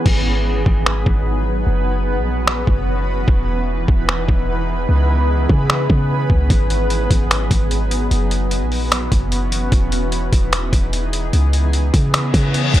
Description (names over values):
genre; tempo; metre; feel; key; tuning
hip hop, atmospheric cloud-rap; 149 BPM; 4/4; half-time; G# minor; A4 = 440 Hz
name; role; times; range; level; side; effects
granular cloud pad; sustained chords; 0.0-12.8 s; E3 to B4; -22 LUFS; equal; built-in reverb, sidechain pumping
clean 808-style bass; bass; 0.1-12.8 s; E1 to C#3; -18 LUFS; equal; none
trip hop sampler-style drum kit; drums; 0.1-12.8 s; crash cymbal, finger snaps, hi-hat, kick drum; -17 LUFS; equal; none
reverse cymbal; sound effects; 12.3-12.8 s; none; -21 LUFS; left 5 dB; none
room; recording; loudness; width
little or no reverb; dry, gritty hardware recording; -15 LUFS; side -13 dB against mid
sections
0.1-12.8 A section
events
break 0.1-6.5; reverse cymbal 12.3-12.8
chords
0.1 G#m7; 1.7 F#7sus4; 3.3 Emaj7; 4.9 C#m7; 6.5 G#m7; 8.1 F#7sus4; 9.7 Emaj7; 11.3 C#m7